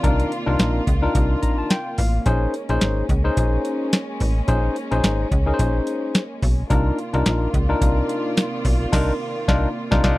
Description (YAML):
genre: early-eighties boogie funk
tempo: 108 BPM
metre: 4/4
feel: swing 56% on 16ths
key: unclear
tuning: A4 = 438 Hz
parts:
  - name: barky tine electric piano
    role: accompaniment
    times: 0.0-10.2 s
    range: Db4 to Bb5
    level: -23 LUFS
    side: left 2 dB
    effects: none
  - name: dark studio string section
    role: sustained chords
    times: 0.0-10.2 s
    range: C3 to D5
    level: -28 LUFS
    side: right 1 dB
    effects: none
  - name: slap-like FM bass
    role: bass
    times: 0.0-10.2 s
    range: Ab1 to Db2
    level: -21 LUFS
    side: equal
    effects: none
  - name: booming analog drum machine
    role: drums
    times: 0.0-10.2 s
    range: crash cymbal, hi-hat, kick drum, snare drum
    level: -20 LUFS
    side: equal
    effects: none
room: little or no reverb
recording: dry, close 1970s-style studio recording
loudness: -18 LUFS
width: side -18 dB against mid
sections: 0.0-10.2 A section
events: tine electric piano fill 1.1-2.3; band accent 8.9-10.2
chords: 0.0 Cm11; 2.3 Bbm11; 6.7 Cm11